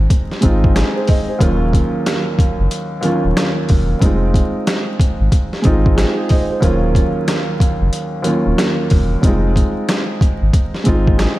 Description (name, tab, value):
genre	hip hop, boom-bap hip-hop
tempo	92 BPM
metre	4/4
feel	swing 63% on 16ths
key	unclear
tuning	A4 = 440 Hz
part	dark grand piano	accompaniment	0.0-11.4 s	Eb2 to Eb5	-18 LUFS	right 1 dB	cassette tape, high-pass filter, low-pass filter
part	sub bass with octave	bass	0.0-11.3 s	Eb1 to Ab1	-16 LUFS	equal	none
part	trip hop sampler-style drum kit	drums	0.1-11.4 s	hi-hat, kick drum, snare drum	-16 LUFS	equal	none
room	light reverb, digital ambience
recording	vinyl crackle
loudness	-13 LUFS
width	side -17 dB against mid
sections	0.0-11.4 A section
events	none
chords	0.0 Fm7; 1.4 Ebm7; 4.0 Fm7; 6.6 Ebm7; 9.2 Fm7